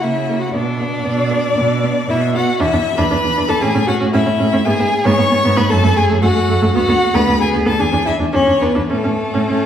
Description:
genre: quick classical-period movement for string quartet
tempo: 115 BPM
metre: 4/4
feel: rubato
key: unclear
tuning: A4 = 435 Hz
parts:
  - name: warm violin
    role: melody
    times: 0.0-9.7 s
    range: A4 to C#6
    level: -19 LUFS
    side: left 3 dB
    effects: none
  - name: rich violin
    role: second line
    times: 0.0-9.7 s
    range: A3 to C#5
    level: -19 LUFS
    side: left 1 dB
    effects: none
  - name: warm viola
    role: accompaniment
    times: 0.0-9.7 s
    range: A3 to D4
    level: -20 LUFS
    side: right 1 dB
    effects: none
  - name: rich cello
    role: bass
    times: 0.0-9.6 s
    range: D2 to C#3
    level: -18 LUFS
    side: right 2 dB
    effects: none
room: wet scoring stage reverb, RT60 1.8 s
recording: heard from further back in the room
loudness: -13 LUFS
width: side -9 dB against mid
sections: 0.0-9.7 A section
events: none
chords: 0.0 F#7/C#; 0.5 Bm; 2.6 E5; 3.6 A; 4.7 G#madd11; 5.7 F#m; 6.7 Bm/D; 7.8 E7; 8.9 A

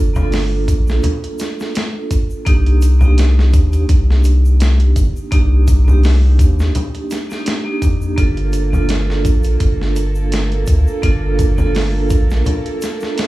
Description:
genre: trip hop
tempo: 84 BPM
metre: 4/4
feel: swing 55% on 16ths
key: G minor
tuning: A4 = 440 Hz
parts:
  - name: vibraphone with medium hard mallets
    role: accompaniment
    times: 0.0-13.3 s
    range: Bb3 to A4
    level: -22 LUFS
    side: right 3 dB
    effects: tremolo, tape echo
  - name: round analog bass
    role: bass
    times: 0.0-12.4 s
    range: G1 to F2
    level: -13 LUFS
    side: equal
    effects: tube saturation
  - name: tube shaker and congas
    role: percussion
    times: 0.2-13.3 s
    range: none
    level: -22 LUFS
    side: left 1 dB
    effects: none
  - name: dusty soul sampler-style drum kit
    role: drums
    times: 0.3-13.3 s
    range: hi-hat, kick drum, snare drum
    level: -17 LUFS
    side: equal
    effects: overdrive
  - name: dark studio violin section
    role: sustained chords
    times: 8.2-13.3 s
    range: Bb3 to A4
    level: -28 LUFS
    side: equal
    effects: none
room: studio ambience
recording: studio reverb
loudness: -12 LUFS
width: side -18 dB against mid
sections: 0.0-13.3 A section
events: none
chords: 0.0 Gm9; 2.5 Cm9; 8.2 Gm9

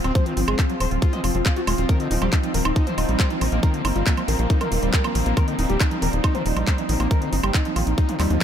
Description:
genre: psychedelic trance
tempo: 138 BPM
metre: 4/4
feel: straight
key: unclear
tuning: A4 = 440 Hz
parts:
  - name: overdriven synth lead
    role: melody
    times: 0.0-8.4 s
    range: Bb3 to F5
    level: -28 LUFS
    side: equal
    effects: chorus, phaser, sidechain pumping, diffuse ambient delay
  - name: swarming drone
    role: sustained chords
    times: 0.0-8.4 s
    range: F3 to C4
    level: -28 LUFS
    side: equal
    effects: built-in reverb, sidechain pumping
  - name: screaming distorted acid line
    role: riff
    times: 0.0-8.4 s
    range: D3 to Gb4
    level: -29 LUFS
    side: equal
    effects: distortion, chorus, auto-pan, sidechain pumping, tape echo
  - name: tight sequencer bass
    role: bass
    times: 0.0-8.4 s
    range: Eb1 to Eb2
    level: -23 LUFS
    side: equal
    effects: tube saturation
  - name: big-room dance drum kit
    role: drums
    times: 0.0-8.4 s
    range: handclaps, hi-hat, snare drum, woodblock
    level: -28 LUFS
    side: right 2 dB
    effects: overdrive
  - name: electronic kick drum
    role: drums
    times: 0.2-8.4 s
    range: none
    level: -20 LUFS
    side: equal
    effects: none
  - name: warbly tape-like pad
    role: texture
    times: 2.8-8.4 s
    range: Bb3 to Bb5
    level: -33 LUFS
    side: equal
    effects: chorus, built-in reverb, sidechain pumping
room: light reverb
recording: none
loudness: -19 LUFS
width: side -9 dB against mid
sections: 0.0-8.4 A section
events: none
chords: 0.0 F5; 1.9 Eb5

